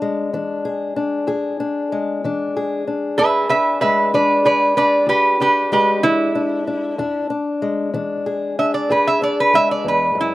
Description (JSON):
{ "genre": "acoustic country blues, solo or duo", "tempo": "63 BPM (dotted quarters)", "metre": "12/8", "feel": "straight", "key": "E mixolydian", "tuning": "A4 = 436 Hz", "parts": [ { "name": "fingerpicked old ladder-braced acoustic guitar", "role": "accompaniment", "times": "0.0-10.3 s", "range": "E2 to G#4", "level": "-21 LUFS", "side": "left 3 dB", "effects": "slapback echo" }, { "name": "lap resonator guitar", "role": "melody", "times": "3.2-10.3 s", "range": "E4 to E5", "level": "-15 LUFS", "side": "right 2 dB", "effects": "none" } ], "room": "little or no reverb", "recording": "recorded outdoors, with no room sound", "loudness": "-16 LUFS", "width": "side -16 dB against mid", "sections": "0.0-10.3 A section", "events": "none", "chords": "0.0 E7" }